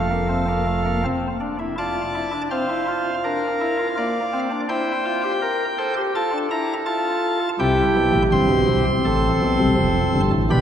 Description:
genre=classical, baroque-style 4-part fugue for pipe organ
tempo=82 BPM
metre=4/4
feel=straight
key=F major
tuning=A4 = 440 Hz
part: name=chamber organ, cornet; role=solo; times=0.0-10.6 s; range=F1 to C6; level=-18 LUFS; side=equal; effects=none
room=wet cathedral reverb, RT60 4.9 s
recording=heard from further back in the room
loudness=-19 LUFS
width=side -9 dB against mid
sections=0.0-1.8 A section; 1.8-10.6 B section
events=none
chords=0.0 F; 3.2 Bb/D; 4.7 C7/E; 6.1 F; 7.6 C; 9.1 F/A

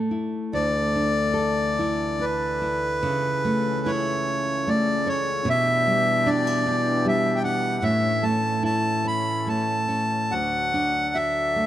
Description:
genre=celtic folk, Celtic slow air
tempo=74 BPM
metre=3/4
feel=uneven beats, rubato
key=D major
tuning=A4 = 441 Hz
part: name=nylon-string guitar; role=accompaniment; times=0.0-11.7 s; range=D2 to A4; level=-25 LUFS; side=right 1 dB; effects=none
part: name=accordion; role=melody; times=0.5-11.7 s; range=B4 to B5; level=-23 LUFS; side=equal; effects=none
part: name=hand-pumped harmonium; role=sustained chords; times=0.5-11.7 s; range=C#2 to A4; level=-32 LUFS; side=left 4 dB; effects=none
room=moderate concert hall reverb, RT60 2.0 s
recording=none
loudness=-21 LUFS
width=side -12 dB against mid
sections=0.5-11.7 A section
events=none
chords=0.0 A5; 0.5 Dsus2; 3.0 A/C#; 5.5 Em7/B; 7.8 A; 10.3 D

